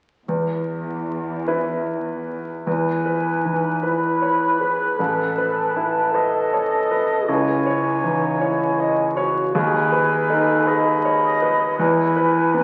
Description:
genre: cinematic, emotional film score for orchestra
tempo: 52 BPM (dotted quarters)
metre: 6/8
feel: rubato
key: unclear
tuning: A4 = 440 Hz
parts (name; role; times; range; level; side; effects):
- bright concert grand piano; accompaniment; 0.3-12.6 s; A1 to D#5; -24 LUFS; equal; none
- rich symphonic cello section; bass; 0.3-2.4 s; E2; -33 LUFS; equal; none
- dark clarinet; second line; 2.7-12.6 s; D#4 to B4; -26 LUFS; equal; none
- silver concert flute; second line; 2.7-12.6 s; G#5 to B5; -27 LUFS; equal; none
- warm oboe; second line; 2.7-12.6 s; B4 to D#5; -27 LUFS; equal; none
room: wet scoring stage reverb, RT60 1.6 s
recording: very old 78 rpm record, vinyl crackle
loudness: -20 LUFS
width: mono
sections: 0.3-2.7 A section; 2.7-12.6 B section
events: none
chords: 0.3 E5; 2.7 E; 5.0 Asus2; 7.3 C#m; 9.5 G#m/D#; 11.8 E

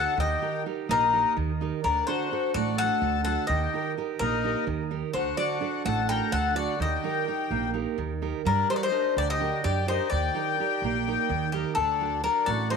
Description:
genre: greek folk, Greek bouzouki band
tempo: 254 BPM (eighths)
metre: 7/8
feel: straight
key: unclear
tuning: A4 = 439 Hz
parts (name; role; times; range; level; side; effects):
- Greek bouzouki; melody; 0.0-12.8 s; G4 to G5; -27 LUFS; left 4 dB; none
- accordion; second line; 0.0-12.8 s; Bb3 to Bb4; -32 LUFS; left 9 dB; none
- fingerpicked steel-string acoustic guitar; accompaniment; 0.0-12.8 s; D3 to D5; -30 LUFS; right 12 dB; none
- upright bass; bass; 0.0-12.8 s; A1 to G2; -31 LUFS; right 1 dB; none
room: moderate echo chamber reverb, RT60 2.1 s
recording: 1960s-style stereo with parts hard left and right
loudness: -24 LUFS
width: side -5 dB against mid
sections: 0.0-11.8 A section; 11.8-12.8 B section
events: none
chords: 0.2 Eb; 1.8 D; 3.5 Eb; 5.1 D; 6.8 Eb; 8.5 Gm; 10.1 Eb; 11.8 D

